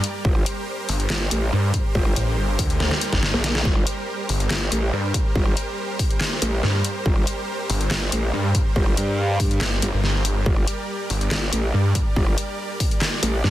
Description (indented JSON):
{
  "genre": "heavy wobble dubstep",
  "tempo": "141 BPM",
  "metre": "4/4",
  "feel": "half-time",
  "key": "G minor",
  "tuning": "A4 = 445 Hz",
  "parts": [
    { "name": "supersaw chords", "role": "sustained chords", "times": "0.0-13.5 s", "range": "G3 to D5", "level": "-28 LUFS", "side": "right 1 dB", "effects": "sidechain pumping" },
    { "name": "dubstep drum kit", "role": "drums", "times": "0.0-13.5 s", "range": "handclaps, hi-hat, snare drum", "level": "-25 LUFS", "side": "left 1 dB", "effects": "none" },
    { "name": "growl bass", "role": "bass", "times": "0.2-13.4 s", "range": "G1 to G2", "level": "-22 LUFS", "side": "equal", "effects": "chorus, overdrive" },
    { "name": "electronic kick drum", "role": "drums", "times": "0.2-12.9 s", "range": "none", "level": "-22 LUFS", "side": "equal", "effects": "none" },
    { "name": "snarling distorted saw bass", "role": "bass", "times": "0.9-13.5 s", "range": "G1 to G2", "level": "-22 LUFS", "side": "equal", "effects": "distortion, overdrive" }
  ],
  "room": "digital ambience",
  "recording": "dense, heavily limited modern master",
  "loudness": "-19 LUFS",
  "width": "side -14 dB against mid",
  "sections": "0.0-13.5 A section",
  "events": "drum fill 2.8-3.7; kick drops out 3.2-3.7",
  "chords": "0.0 Gm"
}